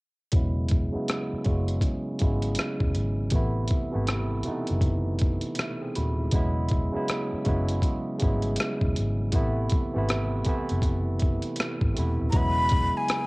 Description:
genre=R&B, neo-soul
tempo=80 BPM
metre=4/4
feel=swing 61% on 16ths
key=E major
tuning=A4 = 437 Hz
part: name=barky tine electric piano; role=accompaniment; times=0.3-13.3 s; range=B2 to B5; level=-29 LUFS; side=right 1 dB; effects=overdrive, low-pass filter, cassette tape
part: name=vintage muted fingered electric bass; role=bass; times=0.3-12.9 s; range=D#1 to A1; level=-27 LUFS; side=equal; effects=tube saturation
part: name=boom bap sampler-style drum kit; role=drums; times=0.3-13.3 s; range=hi-hat, kick drum, rim click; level=-26 LUFS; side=equal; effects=cassette tape
part: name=breathy jazz flute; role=melody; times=12.3-13.3 s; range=G#5 to B5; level=-25 LUFS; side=left 1 dB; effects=none
room=light reverb, digital ambience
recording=home recording on cassette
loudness=-24 LUFS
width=side -25 dB against mid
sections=0.3-12.3 A section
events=filter sweep on tine electric piano 0.3-12.3; tine electric piano fill 5.2-6.3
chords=0.3 E69; 3.3 Amadd9; 6.3 E69; 9.3 Amadd9; 12.3 E69

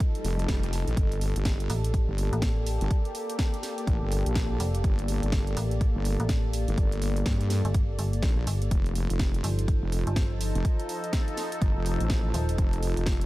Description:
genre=bass house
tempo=124 BPM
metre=4/4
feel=swing 61% on 16ths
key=G minor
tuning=A4 = 440 Hz
part: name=sweeping resonant pad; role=sustained chords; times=0.0-13.3 s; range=F3 to A4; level=-35 LUFS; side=equal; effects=chorus, sidechain pumping
part: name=electronic kick drum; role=drums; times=0.0-13.2 s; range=none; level=-26 LUFS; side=equal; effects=overdrive
part: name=house drum kit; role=drums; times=0.0-13.3 s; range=hi-hat, snare drum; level=-37 LUFS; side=right 1 dB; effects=none
part: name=swell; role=sound effects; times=0.1-1.0 s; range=none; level=-44 LUFS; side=equal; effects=none
part: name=warbly tape-like pad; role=texture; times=0.0-13.3 s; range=Bb3 to A5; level=-37 LUFS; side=equal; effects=chorus, built-in reverb, sidechain pumping
part: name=wobble bass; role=bass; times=0.2-13.3 s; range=F1 to G2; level=-28 LUFS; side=equal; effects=chorus, sidechain pumping
part: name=metallic FM bass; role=bass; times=1.7-12.6 s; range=Eb1 to A1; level=-28 LUFS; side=equal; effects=tube saturation, sidechain pumping
room=little or no reverb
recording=none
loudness=-24 LUFS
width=side -18 dB against mid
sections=0.0-13.3 A section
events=swell 0.1-1.0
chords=0.0 F7; 1.0 Gmadd9; 8.7 F7

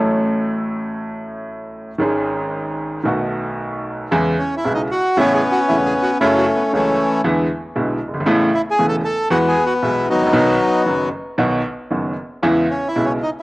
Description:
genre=tango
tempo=116 BPM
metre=4/4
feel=rubato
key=E major from 4.1 s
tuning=A4 = 441 Hz
part: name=bright baby grand piano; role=accompaniment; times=0.0-13.2 s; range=E1 to A4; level=-19 LUFS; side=equal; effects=cassette tape
part: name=bandoneon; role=melody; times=4.4-13.4 s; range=E3 to A4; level=-16 LUFS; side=equal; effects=cassette tape
room=moderate spring reverb, RT60 2.0 s, small room ambience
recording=home recording on cassette, faint mains hum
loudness=-16 LUFS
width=side -20 dB against mid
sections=0.0-4.1 A section; 4.1-13.4 B section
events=none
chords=0.0 F#m/A; 2.0 G#sus4; 3.0 B7; 4.1 E6; 5.2 Aadd9; 6.2 F#m7; 7.2 E7; 8.3 Aadd9; 9.3 Eadd9; 10.3 B; 12.4 E6

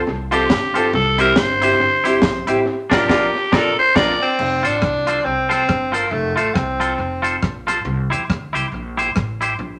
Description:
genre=ska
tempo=139 BPM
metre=4/4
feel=swing 59% on 8ths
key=F major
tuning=A4 = 440 Hz
part: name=upright bass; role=bass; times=0.1-9.8 s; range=F1 to E2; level=-29 LUFS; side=equal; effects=none
part: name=raspy alto saxophone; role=melody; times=0.3-4.4 s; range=G4 to D5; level=-20 LUFS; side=equal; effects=none
part: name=twangy electric guitar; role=accompaniment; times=0.3-9.5 s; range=D4 to C5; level=-24 LUFS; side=equal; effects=none
part: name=warm upright piano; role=stabs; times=0.3-4.1 s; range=C4 to Bb4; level=-23 LUFS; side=equal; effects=none
part: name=deep reggae drum kit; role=drums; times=0.3-9.5 s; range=crash cymbal, hi-hat, kick drum, rim click, snare drum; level=-23 LUFS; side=equal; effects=dub echo
part: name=warm tenor saxophone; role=melody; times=4.2-7.4 s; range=A3 to D4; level=-22 LUFS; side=equal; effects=none
room=wet studio reverb, RT60 0.8 s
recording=none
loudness=-18 LUFS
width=mono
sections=0.0-4.4 A section; 4.4-9.8 B section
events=alto saxophone solo 0.0-4.4; band accent 2.7-4.4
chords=0.0 F; 0.9 C; 2.7 Bb; 4.4 F; 7.9 C

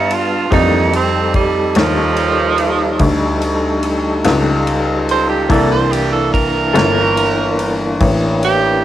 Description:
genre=slow blues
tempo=48 BPM (dotted quarters)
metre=12/8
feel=straight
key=unclear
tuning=A4 = 440 Hz
part: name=clear tenor saxophone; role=second line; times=0.0-8.8 s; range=F3 to C5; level=-16 LUFS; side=right 6 dB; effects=cassette tape
part: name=bright baby grand piano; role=accompaniment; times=0.0-8.8 s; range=B3 to E6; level=-26 LUFS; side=right 6 dB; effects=none
part: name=tonewheel organ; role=sustained chords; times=0.0-8.8 s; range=E3 to A5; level=-19 LUFS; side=equal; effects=slow rotary speaker, cassette tape
part: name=warm baby grand piano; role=bass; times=0.0-8.8 s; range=G1 to G2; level=-17 LUFS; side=left 2 dB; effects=transformer saturation
part: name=natural country drum kit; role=drums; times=0.1-8.6 s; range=kick drum, ride cymbal, snare drum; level=-22 LUFS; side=left 1 dB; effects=none
part: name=electric guitar through a small old amp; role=accompaniment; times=0.5-7.0 s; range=F2 to A4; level=-20 LUFS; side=left 8 dB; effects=tremolo, cassette tape
room=light reverb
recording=home recording on cassette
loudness=-12 LUFS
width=side -12 dB against mid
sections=0.0-8.8 A section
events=tenor saxophone solo 0.0-8.8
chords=0.0 G13; 0.5 F13; 5.5 C13

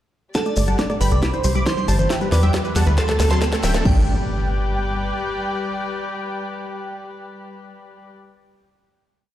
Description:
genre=uplifting trance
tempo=137 BPM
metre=4/4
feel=straight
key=G major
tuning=A4 = 439 Hz
part: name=supersaw stab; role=melody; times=0.3-8.1 s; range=A4 to D6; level=-28 LUFS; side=right 1 dB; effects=sidechain pumping, low-pass filter, tape echo
part: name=glassy synth bell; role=second line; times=0.3-8.2 s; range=A4 to D6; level=-30 LUFS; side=right 2 dB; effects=chorus, tremolo, dub echo
part: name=plucky unison lead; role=second line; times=0.3-8.1 s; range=A4 to D6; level=-33 LUFS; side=right 1 dB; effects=none
part: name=warm chamber string section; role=sustained chords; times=0.3-8.1 s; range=C3 to D5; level=-30 LUFS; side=left 3 dB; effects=sidechain pumping
part: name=wide unison pluck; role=arpeggios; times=0.3-4.1 s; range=E3 to A3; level=-26 LUFS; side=left 1 dB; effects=sidechain pumping, tape echo
part: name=electronic kick drum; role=drums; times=0.3-3.9 s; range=none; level=-22 LUFS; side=equal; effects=overdrive, high-pass filter on kick, studio reverb
part: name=house drum kit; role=drums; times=0.3-3.9 s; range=crash cymbal, hi-hat, rim click, snare drum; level=-28 LUFS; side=equal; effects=overdrive, high-pass filter on snare, studio reverb, high-pass filter on hats, high-pass filter on cymbals
part: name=maracas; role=percussion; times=0.3-3.8 s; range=none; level=-35 LUFS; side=left 4 dB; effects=none
part: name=riser and impact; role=sound effects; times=0.9-8.2 s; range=none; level=-29 LUFS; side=equal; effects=none
part: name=tight sequencer bass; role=bass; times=0.6-5.1 s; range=D1 to E2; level=-19 LUFS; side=equal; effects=sidechain pumping
room=light reverb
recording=played on a big sound system in a bare room, large studio reverb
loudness=-18 LUFS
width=side -12 dB against mid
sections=0.3-3.9 build; 3.9-7.4 final chord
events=build-up 0.3-3.9; drum fill 0.3-3.9; filter sweep on supersaw synth 0.3-3.9; filter sweep on synth pluck 0.3-3.9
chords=0.3 Gsus2; 1.2 Cmaj7; 2.1 Em7; 3.0 D7; 3.9 G

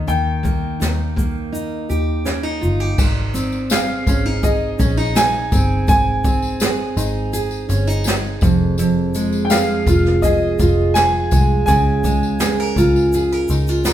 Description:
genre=acoustic pop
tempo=83 BPM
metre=4/4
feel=straight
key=Ab major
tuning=A4 = 438 Hz
part: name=bright upright piano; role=melody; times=0.0-13.9 s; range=Eb5 to Ab5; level=-21 LUFS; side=equal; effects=none
part: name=picked steel-string acoustic guitar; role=accompaniment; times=0.0-13.9 s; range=F2 to Bb4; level=-20 LUFS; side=right 2 dB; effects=none
part: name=vintage muted fingered electric bass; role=bass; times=0.0-13.9 s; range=F1 to Eb2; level=-21 LUFS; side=equal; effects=none
part: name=jazz brush drum kit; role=drums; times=0.1-13.9 s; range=crash cymbal, kick drum, shaker, snare drum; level=-20 LUFS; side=equal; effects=none
part: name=tambourine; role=percussion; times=3.0-13.9 s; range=none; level=-32 LUFS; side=left 5 dB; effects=none
room=wet stone room reverb, RT60 1.2 s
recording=band playing live in one room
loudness=-15 LUFS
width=side -11 dB against mid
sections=0.0-3.0 A section; 3.0-13.9 B section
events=none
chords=0.0 Eb; 3.0 Ab; 8.4 Fm; 11.7 Db6

